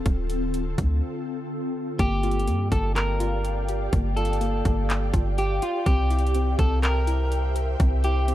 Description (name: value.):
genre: hip hop, atmospheric cloud-rap.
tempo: 124 BPM.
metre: 4/4.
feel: half-time.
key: G dorian.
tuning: A4 = 440 Hz.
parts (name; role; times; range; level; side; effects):
ethereal airy pad; sustained chords; 0.0-8.3 s; D3 to G5; -31 LUFS; left 1 dB; ensemble chorus, built-in reverb, sidechain pumping.
warm 808-style bass; bass; 0.1-8.3 s; D1 to G2; -24 LUFS; equal; none.
trap drum kit; drums; 0.1-8.3 s; handclaps, hi-hat, kick drum; -25 LUFS; equal; none.
electric guitar at the edge of break-up; melody; 2.0-8.3 s; F4 to Bb4; -29 LUFS; equal; tape echo.
soft round pluck; arpeggios; 2.0-8.3 s; Bb3 to Bb4; -33 LUFS; left 4 dB; chorus, tape echo.
room: digital ambience.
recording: dark, warm production.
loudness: -22 LUFS.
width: side -14 dB against mid.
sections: 0.0-2.0 A section; 2.0-8.3 B section.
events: break 1.0-2.0.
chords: 0.0 Dm7; 2.0 Gm7; 5.9 C7.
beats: | 0.06 0.54 1.02 1.51 | 1.99 2.48 2.96 3.44 | 3.93 4.41 4.89 5.38 | 5.86 6.35 6.83 7.32 | 7.80 8.28.